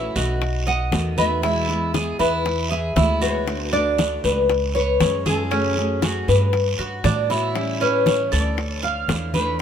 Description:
latin, Cuban son and guajira; 118 BPM; 4/4; straight; A4 = 439 Hz
nylon-string guitar; melody; 0.0-9.6 s; G#4 to F#5; -24 LUFS; left 4 dB
fingerpicked steel-string acoustic guitar; accompaniment; 0.0-9.6 s; B2 to G#4; -28 LUFS; left 2 dB
Cuban tres; arpeggios; 0.0-9.6 s; C#4 to F5; -24 LUFS; right 5 dB
upright bass; bass; 0.0-9.6 s; B1 to A2; -24 LUFS; right 1 dB
congas; percussion; 0.2-9.6 s; -27 LUFS; left 1 dB
guiro; percussion; 0.2-9.6 s; -32 LUFS; right 4 dB
bongos; percussion; 0.4-9.6 s; -27 LUFS; left 6 dB
light reverb; minimal, uncompressed stereo recording; -18 LUFS; side -8 dB against mid
0.0-9.6 A section
0.4 B7; 1.4 E; 3.5 D; 4.5 C#; 5.5 F#madd9; 6.5 Gmaj7; 7.6 A7; 8.6 Dmadd9

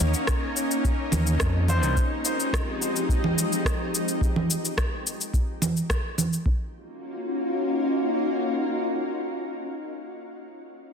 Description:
sunset chillout; 107 BPM; 4/4; straight; Eb dorian; A4 = 438 Hz
clear grand piano; melody; 0.0-1.9 s; C5 to Db5; -33 LUFS; left 1 dB; digital delay
shimmering ambient pad; sustained chords; 0.0-9.5 s; F3 to G4; -27 LUFS; left 1 dB; chorus, built-in reverb
modern bright fingered electric bass; bass; 0.0-1.9 s; C2 to F2; -22 LUFS; equal
electronic shaker, rim click and congas; drums; 0.0-6.4 s; -27 LUFS; right 1 dB; soft clipping on snare
electronic kick drum; drums; 0.3-6.6 s; -25 LUFS; equal; overdrive
wet recital hall reverb, RT60 1.4 s, digital ambience; dense, heavily limited modern master; -23 LUFS; side -7 dB against mid
0.0-6.5 A section; 6.5-8.7 B section
0.0 Eb7sus2; 1.7 Fm9; 6.5 Ebm9

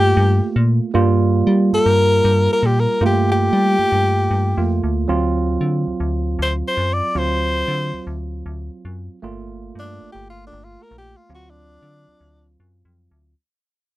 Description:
straight-eighth soul blues; 116 BPM; 4/4; straight; G minor; A4 = 440 Hz
clear tenor saxophone; melody; 0.0-12.5 s; D4 to D5; -18 LUFS; left 1 dB
bright tine electric piano; accompaniment; 0.0-13.3 s; F#3 to F4; -22 LUFS; right 5 dB
metallic FM bass; bass; 0.0-13.3 s; G1 to G3; -19 LUFS; left 1 dB
light reverb; dry, close 1970s-style studio recording; -15 LUFS; side -16 dB against mid
0.0-13.4 A section
fade-out 0.0-13.4
0.0 Gm7; 5.1 D7#9; 9.2 Gm7; 11.3 D7#9

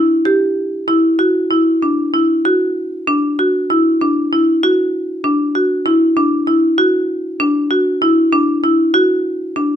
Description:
contemporary instrumental, contemporary; 194 BPM (eighths); 7/8; straight; A4 = 439 Hz
marimba with hard mallets; solo; 0.0-9.7 s; D4 to G4; -13 LUFS; equal
moderate studio reverb, RT60 0.7 s; -13 LUFS; side -9 dB against mid
0.0-9.8 A section

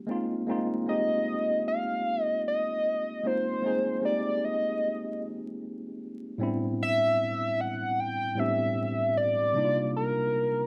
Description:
R&B; 76 BPM; 4/4; swing 62% on 16ths; A4 = 441 Hz
tine electric piano; accompaniment; 0.0-10.7 s; A2 to Ab4; -33 LUFS; equal; overdrive
hollow square lead; melody; 0.9-10.7 s; Bb4 to G5; -29 LUFS; equal; chorus, slapback echo
light reverb; vinyl crackle; -28 LUFS; mono
0.0-6.4 A section; 6.4-10.7 B section
0.1 Bb9sus4; 6.4 Am11; 9.6 Cm11

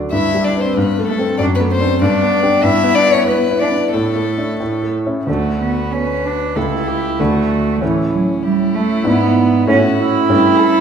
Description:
quick classical-period movement for piano trio; 95 BPM; 2/4; rubato; D major; A4 = 441 Hz
clear grand piano; accompaniment; 0.0-10.8 s; C#2 to B4; -16 LUFS; equal
warm violin; melody; 0.1-10.8 s; C#4 to E5; -20 LUFS; left 5 dB
rich cello; second line; 0.1-10.8 s; E3 to E4; -18 LUFS; right 4 dB
wet recital hall reverb, RT60 1.5 s; heard from further back in the room; -13 LUFS; side -7 dB against mid
0.0-5.3 A section; 5.3-10.8 B section
0.1 G; 0.8 Am7/G; 1.4 D7/F#; 2.0 G; 2.6 Em7/G; 3.9 Asus4; 4.6 A; 5.3 D; 6.6 A7/C#; 7.2 D; 7.8 A; 9.1 E7/G#; 9.7 A; 10.3 A7/G

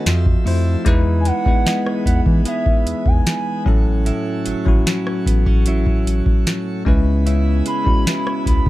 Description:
contemporary R&B; 75 BPM; 4/4; straight; E major; A4 = 440 Hz
bell-like tine electric piano; accompaniment; 0.0-8.7 s; F#3 to D#5; -22 LUFS; left 3 dB; medium stereo tremolo, plate reverb
pipe organ, plenum; sustained chords; 0.0-8.7 s; C#3 to E5; -29 LUFS; right 3 dB; sidechain pumping, plate reverb
direct-recorded clean electric guitar; arpeggios; 0.0-8.7 s; A2 to F#4; -27 LUFS; right 5 dB; lush chorus, analog delay
round analog bass; bass; 0.1-8.7 s; G#1 to E3; -18 LUFS; equal
booming analog drum machine; drums; 0.1-8.7 s; hi-hat, kick drum, rim click, snare drum; -17 LUFS; equal
gliding portamento lead; melody; 1.2-8.7 s; E5 to B5; -24 LUFS; right 1 dB; chorus, analog delay, plate reverb
little or no reverb; dark, warm production; -15 LUFS; side -16 dB against mid
0.0-8.7 A section
0.1 Fmaj7; 0.9 Emaj7; 3.7 A6; 6.9 C#m7

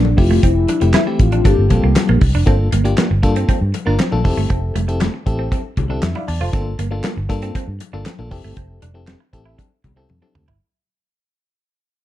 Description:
early-eighties boogie funk; 118 BPM; 4/4; straight; A4 = 440 Hz
soft octave-layered synth lead; melody; 0.0-2.2 s; D4 to G4; -20 LUFS; left 4 dB; chorus, phaser
vintage muted fingered electric bass; bass; 0.0-10.6 s; F1 to G2; -18 LUFS; equal
congas; percussion; 0.0-10.3 s; -27 LUFS; left 8 dB
FM electric piano with tremolo; accompaniment; 0.2-10.4 s; A3 to A5; -24 LUFS; left 3 dB
clean electric guitar; riff; 0.2-10.6 s; A3 to F4; -25 LUFS; right 8 dB; analog chorus
damped 70s drum kit; drums; 0.2-10.6 s; handclaps, hi-hat, kick drum, snare drum, toms; -18 LUFS; equal
light reverb, small room reverb; dark, warm production; -14 LUFS; side -13 dB against mid
0.0-2.5 A section; 2.5-10.6 B section
fade-out 2.5-10.6; FM electric piano fill 5.8-6.5; drum fill 10.1-10.6
0.2 Fmaj9; 1.5 Gm11; 2.5 Gm9; 4.2 Fmaj9; 6.5 Gm9; 8.3 Fmaj9

